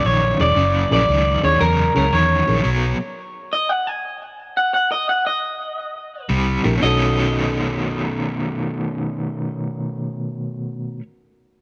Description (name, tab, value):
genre	blues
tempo	115 BPM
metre	4/4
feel	swing 67% on 8ths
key	B mixolydian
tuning	A4 = 440 Hz
part	electric guitar through a small old amp	melody	0.0-11.0 s	A#4 to G#5	-22 LUFS	equal	tape echo
part	overdriven semi-hollow guitar	riff	0.0-3.0, 6.3-11.0 s	F#2 to C#4	-25 LUFS	equal	tremolo
part	vintage muted fingered electric bass	bass	0.0-2.9, 6.3-11.0 s	E1 to E2	-23 LUFS	equal	none
part	reed electric piano	accompaniment	0.4-2.6, 6.6-11.0 s	C#4 to C#5	-30 LUFS	equal	overdrive
room	light reverb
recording	none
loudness	-20 LUFS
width	mono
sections	0.0-6.8 A section; 6.8-11.0 B section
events	stop 2.7-6.3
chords	0.0 F#7; 2.7 B; 6.3 C9; 6.8 B9